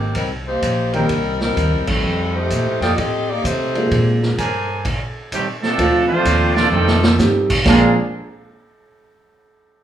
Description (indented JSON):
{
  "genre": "jazz, big band swing",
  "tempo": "128 BPM",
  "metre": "4/4",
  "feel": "swing 66% on 8ths",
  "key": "Bb major",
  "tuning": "A4 = 441 Hz",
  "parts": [
    { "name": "warm saxophone section", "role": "melody", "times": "0.0-4.2 s", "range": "Eb3 to Eb5", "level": "-21 LUFS", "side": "left 2 dB", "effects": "none" },
    { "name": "upright bass", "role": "bass", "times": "0.0-7.9 s", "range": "Ab1 to C3", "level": "-21 LUFS", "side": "equal", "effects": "none" },
    { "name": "vintage drum kit", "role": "drums", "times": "0.1-7.8 s", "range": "crash cymbal, hi-hat, kick drum, ride cymbal, snare drum", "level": "-22 LUFS", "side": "right 1 dB", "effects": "none" },
    { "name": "warm concert grand piano", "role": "accompaniment", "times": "0.9-7.9 s", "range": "Eb3 to G4", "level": "-19 LUFS", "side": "right 1 dB", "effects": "none" },
    { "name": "clear trumpet section", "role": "stabs", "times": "0.9-4.8 s", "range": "D4 to Ab5", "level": "-23 LUFS", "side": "right 1 dB", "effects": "none" },
    { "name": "clear trumpet section", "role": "melody", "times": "5.3-8.0 s", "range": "G3 to Bb5", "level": "-19 LUFS", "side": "right 2 dB", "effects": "none" },
    { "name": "brilliant trombone section", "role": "second line", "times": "5.3-7.9 s", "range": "Bb2 to D4", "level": "-19 LUFS", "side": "right 3 dB", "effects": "none" }
  ],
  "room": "wet large studio reverb, RT60 1.0 s",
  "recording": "band playing live in one room, small room ambience",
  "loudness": "-15 LUFS",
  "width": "side -10 dB against mid",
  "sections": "0.0-5.8 A section; 5.8-7.7 B section; 7.7-9.5 C section",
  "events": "band accent 1.8; stop 4.9-5.8; drum fill 6.7-7.2",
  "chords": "0.0 Cm7; 2.0 F9; 3.9 Bb9; 4.9 Fadd9 (rootless); 5.8 Dm7; 6.7 F9; 7.7 Bb9"
}